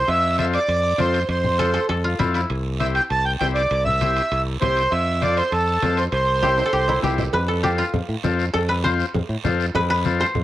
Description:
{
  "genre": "latin, cumbia",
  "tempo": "199 BPM",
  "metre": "4/4",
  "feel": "straight",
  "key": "unclear",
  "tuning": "A4 = 440 Hz",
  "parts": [
    { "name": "accordion", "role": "melody", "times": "0.0-7.0 s", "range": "A4 to A5", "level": "-20 LUFS", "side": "right 2 dB", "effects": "plate reverb" },
    { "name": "koto", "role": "second line", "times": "0.0-10.4 s", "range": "E4 to C5", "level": "-23 LUFS", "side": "left 1 dB", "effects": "cassette tape, plate reverb" },
    { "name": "modern bright fingered electric bass", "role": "bass", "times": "0.0-10.4 s", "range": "C2 to A2", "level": "-24 LUFS", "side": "equal", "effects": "tube saturation" },
    { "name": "congas", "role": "percussion", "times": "0.1-10.4 s", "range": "none", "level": "-27 LUFS", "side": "left 4 dB", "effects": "none" },
    { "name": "guiro", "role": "percussion", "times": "0.1-10.4 s", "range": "none", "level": "-37 LUFS", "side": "right 9 dB", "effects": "none" },
    { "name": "timbales and cowbell", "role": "percussion", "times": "0.1-10.4 s", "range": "none", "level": "-32 LUFS", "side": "right 8 dB", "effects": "none" },
    { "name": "combo organ", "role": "accompaniment", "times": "0.4-10.3 s", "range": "C4 to C5", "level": "-26 LUFS", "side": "left 6 dB", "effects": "cassette tape, plate reverb" }
  ],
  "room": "moderate studio ambience, RT60 0.5 s",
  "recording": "home recording on cassette",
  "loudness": "-18 LUFS",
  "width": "side -14 dB against mid",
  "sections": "0.0-7.3 A section; 7.3-10.4 B section",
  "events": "drum fill 6.4-7.3; koto solo 7.3-10.4",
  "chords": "0.1 F; 2.5 C; 4.9 F; 6.1 C; 7.3 F"
}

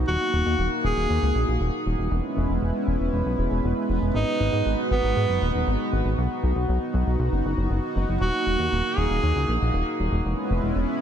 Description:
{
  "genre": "synthwave",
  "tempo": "118 BPM",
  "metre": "4/4",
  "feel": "straight",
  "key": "C# dorian",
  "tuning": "A4 = 442 Hz",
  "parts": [
    { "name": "chorused pulse-width pad", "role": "sustained chords", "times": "0.0-11.0 s", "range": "G#3 to B4", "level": "-27 LUFS", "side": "right 1 dB", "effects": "none" },
    { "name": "chorused synth bass", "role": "bass", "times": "0.0-10.8 s", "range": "D#1 to G#2", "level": "-24 LUFS", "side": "equal", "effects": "none" },
    { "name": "clear tenor saxophone", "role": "melody", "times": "0.1-9.6 s", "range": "B3 to G#4", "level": "-27 LUFS", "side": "right 2 dB", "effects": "tape echo" }
  ],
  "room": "light reverb",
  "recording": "dense, heavily limited modern master",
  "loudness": "-22 LUFS",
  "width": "side -9 dB against mid",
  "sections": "0.0-11.0 A section",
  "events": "none",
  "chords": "0.1 D#m; 2.1 C#m7/E; 4.1 G#m7; 6.2 B; 8.2 D#m; 10.2 C#m7/E"
}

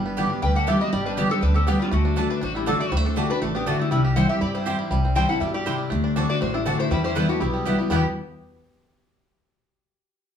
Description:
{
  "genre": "bluegrass",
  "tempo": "241 BPM",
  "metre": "4/4",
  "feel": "swing 54% on 8ths",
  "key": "E minor",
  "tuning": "A4 = 439 Hz",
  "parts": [
    { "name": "bluegrass banjo", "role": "melody", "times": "0.0-8.1 s", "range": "G3 to G4", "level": "-30 LUFS", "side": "right 3 dB", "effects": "none" },
    { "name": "picked steel-string acoustic guitar", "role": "accompaniment", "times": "0.0-8.0 s", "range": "E2 to G4", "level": "-25 LUFS", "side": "left 2 dB", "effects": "none" },
    { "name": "upright bass", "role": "bass", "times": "0.0-8.0 s", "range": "G1 to G2", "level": "-25 LUFS", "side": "equal", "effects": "none" },
    { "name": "mandolin", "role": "stabs", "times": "0.2-8.0 s", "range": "A3 to A5", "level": "-30 LUFS", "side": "right 4 dB", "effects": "none" },
    { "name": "lap resonator guitar", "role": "melody", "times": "0.4-8.0 s", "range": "E4 to G5", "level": "-28 LUFS", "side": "left 2 dB", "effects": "none" },
    { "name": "clear fiddle", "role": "second line", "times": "0.4-8.0 s", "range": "G3 to C5", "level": "-33 LUFS", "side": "left 3 dB", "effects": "none" }
  ],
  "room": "wet large studio reverb, RT60 0.8 s",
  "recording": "heard from further back in the room",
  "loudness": "-20 LUFS",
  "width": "side -8 dB against mid",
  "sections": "0.0-7.9 A section; 7.9-8.9 B section",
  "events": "none",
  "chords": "0.0 G; 1.9 D; 3.9 C; 5.9 D7; 6.9 Em"
}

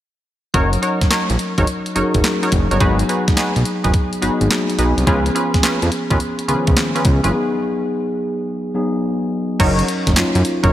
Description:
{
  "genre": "R&B, new jack swing",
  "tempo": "106 BPM",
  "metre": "4/4",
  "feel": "swing 67% on 16ths",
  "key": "unclear",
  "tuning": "A4 = 435 Hz",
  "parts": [
    { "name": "mellow tine electric piano", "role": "accompaniment", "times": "0.5-10.7 s", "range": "D#3 to A#4", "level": "-20 LUFS", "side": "left 1 dB", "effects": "lush chorus" },
    { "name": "funky polysynth comp", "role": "stabs", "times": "0.5-10.7 s", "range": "C#4 to C#5", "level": "-22 LUFS", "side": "right 1 dB", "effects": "chorus" },
    { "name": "fat analog bass", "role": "bass", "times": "0.5-10.7 s", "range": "F#1 to F#2", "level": "-18 LUFS", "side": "equal", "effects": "none" },
    { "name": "crisp 8-bit digital drum machine", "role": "drums", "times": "0.5-10.7 s", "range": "crash cymbal, handclaps, hi-hat, kick drum, snare drum", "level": "-19 LUFS", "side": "equal", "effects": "none" }
  ],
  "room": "moderate lush hall reverb, RT60 2.5 s",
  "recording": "bright 1980s-style digital production",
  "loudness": "-15 LUFS",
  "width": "side -12 dB against mid",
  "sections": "0.5-9.6 A section; 9.6-10.7 B section",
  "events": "break 7.3-9.6",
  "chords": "0.5 F#6; 2.8 G#m7; 5.1 C#7; 7.3 G#m7; 9.6 F#6"
}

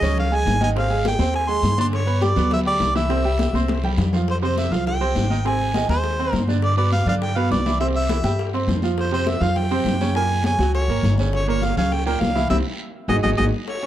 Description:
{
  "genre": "latin, salsa",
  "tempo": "204 BPM",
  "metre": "4/4",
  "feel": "straight",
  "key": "F harmonic minor from 4.3 s",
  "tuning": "A4 = 440 Hz",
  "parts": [
    { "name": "warm harmonica", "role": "melody", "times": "0.0-13.9 s", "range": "C5 to C6", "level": "-24 LUFS", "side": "equal", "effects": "none" },
    { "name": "bright upright piano", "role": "accompaniment", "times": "0.0-13.9 s", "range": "Bb2 to Db6", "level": "-25 LUFS", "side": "right 4 dB", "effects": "none" },
    { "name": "upright bass", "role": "bass", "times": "0.0-13.5 s", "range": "G1 to G2", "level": "-22 LUFS", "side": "equal", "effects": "none" },
    { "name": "bongos", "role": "percussion", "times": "0.0-13.9 s", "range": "none", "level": "-30 LUFS", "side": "left 6 dB", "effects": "none" },
    { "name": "congas", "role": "percussion", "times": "0.0-13.9 s", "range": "none", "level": "-27 LUFS", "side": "left 1 dB", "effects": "none" },
    { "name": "guiro", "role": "percussion", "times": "0.0-13.9 s", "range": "none", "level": "-38 LUFS", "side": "right 3 dB", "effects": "none" }
  ],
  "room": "light reverb",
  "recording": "dark, warm production",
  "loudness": "-18 LUFS",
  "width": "side -12 dB against mid",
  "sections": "0.0-4.3 A section; 4.3-13.7 B section",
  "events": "drum fill 3.5-4.3; band accent 12.5-13.7",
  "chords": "0.0 Db; 0.8 Ab; 1.9 G; 3.1 C; 4.3 Fm; 5.5 Ab; 6.6 G; 7.8 C; 9.0 F5; 10.2 Gbadd9; 11.3 Gdim; 12.5 C; 13.1 Ab5"
}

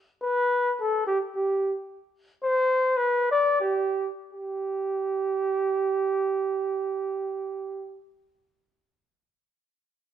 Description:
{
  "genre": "alpine folk",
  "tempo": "81-109 BPM",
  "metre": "2/4",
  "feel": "straight",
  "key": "G major",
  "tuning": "A4 = 436 Hz",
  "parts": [
    { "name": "mellow flugelhorn", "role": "solo", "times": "0.2-8.0 s", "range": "G4 to D5", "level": "-24 LUFS", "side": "right 1 dB", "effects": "none" }
  ],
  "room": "moderate stone room reverb, RT60 1.2 s",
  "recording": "band playing live in one room",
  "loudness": "-24 LUFS",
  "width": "side -10 dB against mid",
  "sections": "0.0-4.3 A section; 4.3-7.3 B section",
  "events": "slowing down 1.9-4.3",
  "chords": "none"
}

